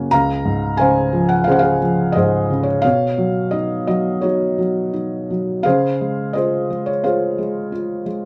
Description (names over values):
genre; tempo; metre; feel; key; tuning
classical, lyrical solo piano; 87 BPM; 4/4; rubato; Db major; A4 = 441 Hz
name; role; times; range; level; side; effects
felt-muted upright piano; solo; 0.0-8.3 s; Db2 to Bb5; -18 LUFS; equal; none
room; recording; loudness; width
light reverb; dark, warm production; -18 LUFS; mono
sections
0.0-8.3 A section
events
none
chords
0.1 Dbmaj7; 2.8 Cbadd9; 5.6 Dbmaj7